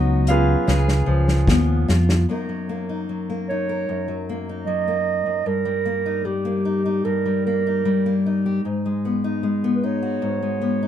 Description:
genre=acoustic folk-pop ballad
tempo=76 BPM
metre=4/4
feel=straight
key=F# major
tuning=A4 = 436 Hz
part: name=clear baby grand piano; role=melody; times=0.0-1.9 s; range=D#4 to E#5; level=-24 LUFS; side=right 2 dB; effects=none
part: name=fingerpicked steel-string acoustic guitar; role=accompaniment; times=0.0-10.9 s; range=F#2 to A#4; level=-23 LUFS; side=left 3 dB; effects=none
part: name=mellow fretless electric bass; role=bass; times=0.0-2.2 s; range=C#2 to E#2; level=-18 LUFS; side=equal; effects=wide subtle chorus
part: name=unplugged drum kit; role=drums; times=0.3-2.3 s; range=hi-hat, kick drum, snare drum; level=-22 LUFS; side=equal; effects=none
part: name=mellow clarinet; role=second line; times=3.5-10.9 s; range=G4 to D#5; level=-23 LUFS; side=right 6 dB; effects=none
room=light reverb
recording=dark, warm production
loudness=-19 LUFS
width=side -10 dB against mid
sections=0.0-2.3 A section; 2.3-10.9 B section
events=drum fill 0.7-2.3; clarinet solo 2.3-10.9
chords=0.0 C#7sus4; 0.7 C#7; 2.3 F#6; 5.5 D#/G; 8.6 G#m7

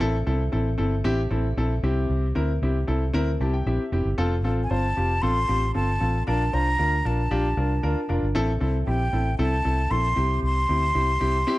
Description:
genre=uptempo 1960s-style soul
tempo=115 BPM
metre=4/4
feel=straight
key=unclear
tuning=A4 = 440 Hz
part: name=warm concert grand piano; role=accompaniment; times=0.0-11.6 s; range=C4 to A5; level=-26 LUFS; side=left 1 dB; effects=none
part: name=vintage muted fingered electric bass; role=bass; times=0.0-11.4 s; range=F1 to D2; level=-24 LUFS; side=equal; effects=none
part: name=breathy concert flute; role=melody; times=4.6-11.6 s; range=G5 to C6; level=-26 LUFS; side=equal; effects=none
room=light reverb, small room ambience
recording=nothing above 10.7 kHz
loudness=-21 LUFS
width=side -18 dB against mid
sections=0.0-11.6 A section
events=grand piano fill 3.1-4.2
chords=0.0 Am; 1.8 C; 4.2 F; 6.3 Bb; 8.4 Am; 10.2 C

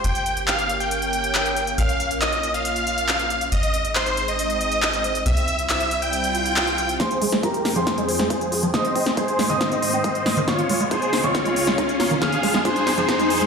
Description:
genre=uplifting trance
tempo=138 BPM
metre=4/4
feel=straight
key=F minor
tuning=A4 = 440 Hz
part: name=supersaw chords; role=melody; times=0.0-13.5 s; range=F4 to G5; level=-22 LUFS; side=equal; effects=sidechain pumping, low-pass filter, dub echo
part: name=lush unison pad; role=sustained chords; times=0.0-13.5 s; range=Db2 to G5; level=-29 LUFS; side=equal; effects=chorus, phaser, sidechain pumping
part: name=tight sequencer bass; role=bass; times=0.0-7.0 s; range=G1 to C2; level=-27 LUFS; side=equal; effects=sidechain pumping
part: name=big-room dance drum kit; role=drums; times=0.0-13.5 s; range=handclaps, hi-hat, snare drum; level=-25 LUFS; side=left 1 dB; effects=sidechain pumping on hats
part: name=swell and riser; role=sound effects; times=6.3-13.5 s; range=none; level=-28 LUFS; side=left 2 dB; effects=none
part: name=dark grand piano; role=second line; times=7.0-13.5 s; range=Bb5 to F6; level=-29 LUFS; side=right 2 dB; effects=sidechain pumping, low-pass filter, ping-pong delay
part: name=liquid acid bass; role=arpeggios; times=7.0-13.4 s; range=Eb3 to F4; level=-27 LUFS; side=right 2 dB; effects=ensemble chorus, sidechain pumping, ping-pong delay
part: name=electronic kick drum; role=drums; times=7.0-13.2 s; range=none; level=-30 LUFS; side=equal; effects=high-pass filter on kick, high-pass filter on room
room=moderate digital room reverb, RT60 1.2 s, digital ambience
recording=played on a big sound system in a bare room, large studio reverb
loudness=-19 LUFS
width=side -5 dB against mid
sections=0.0-7.0 A section; 7.0-13.5 B section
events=swell 6.3-7.0; build-up 7.0-13.5; drum fill 7.0-13.5; riser 7.0-13.5; filter sweep on supersaw synth 7.0-13.5; filter sweep on acid bass 7.0-13.5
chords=0.0 Gdim; 1.8 Bbm; 3.5 Ab; 5.3 C; 7.0 Fmadd9; 8.7 Ab; 10.5 Dbadd9; 12.2 Fmadd9

